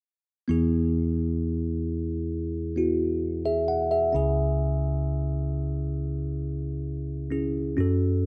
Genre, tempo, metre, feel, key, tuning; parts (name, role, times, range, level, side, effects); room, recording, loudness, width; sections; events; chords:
pop; 66 BPM; 4/4; straight; E major; A4 = 440 Hz
bell-like tine electric piano; accompaniment; 0.5-8.3 s; C#2 to F#5; -27 LUFS; equal; phaser
light reverb; dark, warm production; -27 LUFS; mono
0.5-8.3 A section
0.5 E; 4.1 C#m